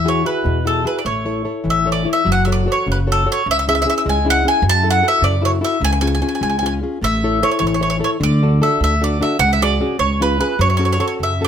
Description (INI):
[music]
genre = italian folk, Italian serenade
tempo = 100 BPM (dotted quarters)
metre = 6/8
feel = rubato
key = F# minor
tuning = A4 = 440 Hz
[part]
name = bowl-back mandolin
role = melody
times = 0.0-11.5 s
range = A4 to A5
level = -18 LUFS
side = right 1 dB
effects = plate reverb
[part]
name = nylon-string guitar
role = accompaniment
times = 0.0-11.5 s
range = B2 to C#5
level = -20 LUFS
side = left 3 dB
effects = none
[part]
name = upright bass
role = bass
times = 0.0-11.5 s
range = F#1 to F#2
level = -20 LUFS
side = right 1 dB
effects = none
[sound]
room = moderate studio reverb, RT60 0.6 s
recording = none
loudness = -14 LUFS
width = side -8 dB against mid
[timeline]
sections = 0.0-2.3 A section; 2.3-11.5 B section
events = none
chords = 0.0 Eadd9; 1.0 A; 2.3 F#m; 3.5 C#m; 4.6 F#m7; 5.8 C#; 7.0 A; 8.2 D; 9.4 C#sus4; 10.0 C#; 10.6 F#m